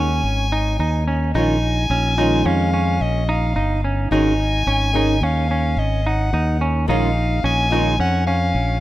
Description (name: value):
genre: progressive instrumental, progressive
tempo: 108 BPM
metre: 5/4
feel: straight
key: unclear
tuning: A4 = 439 Hz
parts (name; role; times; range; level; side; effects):
- bright soprano saxophone; melody; 0.0-8.8 s; D#5 to G#5; -24 LUFS; left 2 dB; none
- archtop guitar, miked and amplified; accompaniment; 0.0-7.9 s; D#3 to G#4; -24 LUFS; equal; double-tracked left and right
- semi-hollow electric guitar; arpeggios; 0.0-8.8 s; C#4 to D#4; -23 LUFS; right 2 dB; tape echo
- modern bright fingered electric bass; bass; 0.0-8.8 s; G1 to E#2; -20 LUFS; equal; none
room: light reverb, digital ambience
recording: rough home demo mix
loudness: -16 LUFS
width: side -15 dB against mid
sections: 0.0-8.8 A section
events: none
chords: 0.0 G#5; 1.3 A#m7; 4.1 G#5; 6.9 A#m7